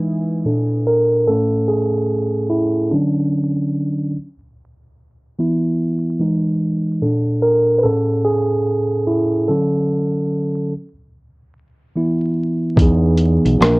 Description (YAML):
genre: lo-fi hip hop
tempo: 73 BPM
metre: 4/4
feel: swing 63% on 16ths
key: E major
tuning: A4 = 440 Hz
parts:
  - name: mellow tine electric piano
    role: accompaniment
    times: 0.0-13.8 s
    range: A2 to B4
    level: -16 LUFS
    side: equal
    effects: none
  - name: fingered electric bass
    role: bass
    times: 12.8-13.8 s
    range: A#1 to E2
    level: -17 LUFS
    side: equal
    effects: none
  - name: boom bap sampler-style drum kit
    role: drums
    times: 12.8-13.8 s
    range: hi-hat, kick drum, rim click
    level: -14 LUFS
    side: equal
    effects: overdrive
room: moderate small room reverb, RT60 0.5 s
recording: worn, warbling old tape, cassette tape, vinyl crackle, warbly pitch drift, low-pass filter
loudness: -15 LUFS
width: side -26 dB against mid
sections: 0.0-12.8 A section; 12.8-13.8 B section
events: tine electric piano solo 0.0-12.8; filter sweep 0.0-12.8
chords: 0.4 A#maj7; 1.3 Amaj7; 2.9 Dmaj7; 4.1 E5; 6.2 Emaj7; 7.0 A#maj7; 7.8 Amaj7; 9.5 Dmaj7; 10.7 E5; 12.8 Emaj7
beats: 0.45 1.27 2.09 | 2.92 3.74 4.56 5.38 | 6.20 7.02 7.85 8.67 | 9.49 10.31 11.13 11.96 | 12.78 13.60